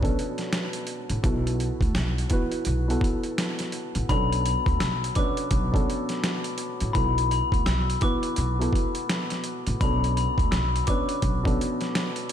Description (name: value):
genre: hip hop, boom-bap hip-hop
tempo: 84 BPM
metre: 4/4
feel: swing 62% on 16ths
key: B minor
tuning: A4 = 440 Hz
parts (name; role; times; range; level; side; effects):
- dark upright piano; accompaniment; 0.0-12.3 s; B2 to B4; -30 LUFS; equal; cassette tape, high-pass filter, low-pass filter
- upright bass; bass; 0.0-11.5 s; A1 to D2; -26 LUFS; equal; none
- boom bap sampler-style drum kit; drums; 0.0-12.3 s; hi-hat, kick drum, snare drum; -27 LUFS; equal; overdrive
- glockenspiel with hard plastic mallets; melody; 4.1-11.9 s; B5 to E6; -29 LUFS; left 6 dB; high-pass filter, low-pass filter, analog delay
room: light reverb, studio reverb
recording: none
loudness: -23 LUFS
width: side -10 dB against mid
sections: 0.0-4.1 A section; 4.1-12.3 B section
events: none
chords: 0.0 Bm7; 1.2 D69/B (rootless); 4.1 Bm7; 6.9 D69/B; 9.8 Bm7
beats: 0.52 | 1.24 1.95 2.66 3.38 | 4.09 4.81 5.52 6.24 | 6.95 7.66 8.38 9.09 | 9.81 10.52 11.23 11.95